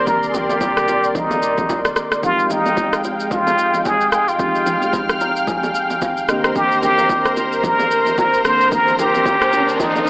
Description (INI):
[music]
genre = amapiano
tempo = 111 BPM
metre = 4/4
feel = swing 58% on 16ths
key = F dorian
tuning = A4 = 439 Hz
[part]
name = trumpet with plunger mute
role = melody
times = 0.0-10.1 s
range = Eb4 to C5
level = -17 LUFS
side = equal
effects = analog delay
[part]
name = mellow tine electric piano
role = accompaniment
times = 0.0-10.1 s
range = D3 to Bb5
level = -25 LUFS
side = equal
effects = medium stereo tremolo
[part]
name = lush unison pad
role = sustained chords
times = 0.0-10.1 s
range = Ab3 to F6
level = -21 LUFS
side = equal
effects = chorus, sidechain pumping
[part]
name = warm sub bass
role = bass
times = 0.0-1.9 s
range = C2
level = -38 LUFS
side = equal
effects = none
[part]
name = deep house drum kit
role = drums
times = 0.1-10.1 s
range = kick drum, rim click, shaker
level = -24 LUFS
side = equal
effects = none
[part]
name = congas and bongos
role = percussion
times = 0.1-10.1 s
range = none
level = -26 LUFS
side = equal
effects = none
[part]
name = riser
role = sound effects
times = 8.0-10.1 s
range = none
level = -26 LUFS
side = equal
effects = none
[sound]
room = light reverb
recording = dry, gritty hardware recording, AM radio sound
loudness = -14 LUFS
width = side -25 dB against mid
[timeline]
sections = 0.0-10.1 A section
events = tine electric piano fill 4.9-6.6; riser 8.0-10.1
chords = 0.0 Cm9; 2.2 Fm9; 6.3 Cm9